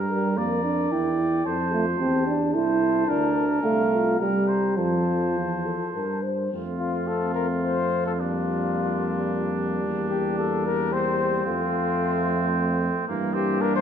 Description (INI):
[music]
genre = classical, brass quintet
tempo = 110 BPM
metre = 3/4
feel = rubato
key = F major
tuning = A4 = 440 Hz
[part]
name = mellow trumpet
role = melody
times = 0.0-13.8 s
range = F4 to Bb5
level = -29 LUFS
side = left 9 dB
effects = none
[part]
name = warm trumpet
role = second line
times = 0.0-13.8 s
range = Bb3 to D5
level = -30 LUFS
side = right 5 dB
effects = none
[part]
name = mellow French horn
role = accompaniment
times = 0.0-13.8 s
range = A3 to C5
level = -32 LUFS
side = left 5 dB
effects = none
[part]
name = warm tuba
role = bass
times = 0.0-13.8 s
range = C2 to G2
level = -29 LUFS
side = right 2 dB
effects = none
[part]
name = warm euphonium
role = accompaniment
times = 0.1-13.8 s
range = E3 to E4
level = -26 LUFS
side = right 2 dB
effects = none
[sound]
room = wet recital hall reverb, RT60 1.5 s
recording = none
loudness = -22 LUFS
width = side -8 dB against mid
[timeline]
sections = 0.0-6.5 A section; 6.5-13.8 A section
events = none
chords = 0.0 Edim; 1.5 F; 3.1 Bb/D; 3.6 F/C; 4.2 C5; 4.8 F; 8.2 Gm7/F; 9.8 C7/E; 11.5 F; 13.1 Edim/G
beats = 0.37 0.91 | 1.45 1.99 2.54 | 3.09 3.64 4.21 | 4.78 5.36 5.94 | 6.53 7.08 7.64 | 8.19 8.74 9.29 | 9.83 10.38 10.92 | 11.46 12.01 12.54 | 13.08 13.62